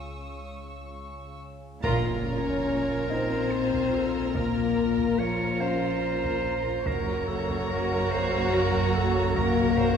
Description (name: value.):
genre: cinematic, suspense film score.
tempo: 72 BPM.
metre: 3/4.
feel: straight.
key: Bb minor.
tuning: A4 = 440 Hz.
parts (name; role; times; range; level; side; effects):
organ-like drone; drone; 0.0-10.0 s; Bb1 to Db2; -39 LUFS; right 1 dB; ensemble chorus, built-in reverb.
dark baby grand piano; texture; 0.0-10.0 s; Db4 to F5; -38 LUFS; equal; none.
rich studio violin section; texture; 0.0-6.4 s; Db6 to Ab6; -44 LUFS; left 1 dB; none.
bright clarinet; second line; 1.8-10.0 s; F4 to Db5; -31 LUFS; right 1 dB; none.
warm chamber violin section; second line; 1.8-10.0 s; Bb4 to Bb5; -34 LUFS; left 1 dB; none.
rich studio viola section; accompaniment; 1.8-10.0 s; Bb3 to Gb4; -32 LUFS; right 2 dB; none.
rich studio cello section; bass; 1.8-10.0 s; Gb2 to Bb2; -34 LUFS; right 4 dB; none.
warm studio double bass section; bass; 1.8-10.0 s; Gb1 to Bb1; -34 LUFS; right 4 dB; none.
solo taiko drums; drums; 1.8-10.0 s; none; -37 LUFS; right 1 dB; none.
timpani; percussion; 1.8-3.1 s; Bb2; -38 LUFS; left 2 dB; none.
impact; sound effects; 1.8-4.4 s; none; -38 LUFS; right 1 dB; none.
rich studio violin section; melody; 2.2-10.0 s; F4 to Db5; -34 LUFS; equal; none.
mellow French horn section; sustained chords; 2.3-10.0 s; F3 to Db4; -28 LUFS; left 6 dB; none.
room: wet scoring stage reverb, RT60 2.1 s.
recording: minimal, uncompressed stereo recording.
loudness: -24 LUFS.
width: side -7 dB against mid.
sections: 0.0-1.8 A section; 1.8-10.0 B section.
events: break 0.0-1.8; band accent 1.8-2.7; impact 1.8-4.4.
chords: 0.0 Dbm; 1.8 Bbm; 6.9 Gb.